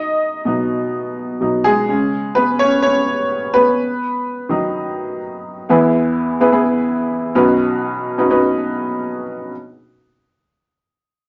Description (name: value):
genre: pop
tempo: 126 BPM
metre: 4/4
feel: straight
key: B major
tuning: A4 = 440 Hz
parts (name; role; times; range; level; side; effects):
- clear upright piano; solo; 0.0-9.5 s; B1 to D#5; -18 LUFS; equal; none
room: wet club reverb, RT60 0.5 s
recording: nothing above 7.6 kHz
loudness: -17 LUFS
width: mono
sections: 0.0-5.7 A section; 5.7-9.5 B section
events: upright piano solo 0.0-5.7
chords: 0.0 B; 1.9 G#madd11/C#; 3.8 B; 5.7 E; 7.4 Badd9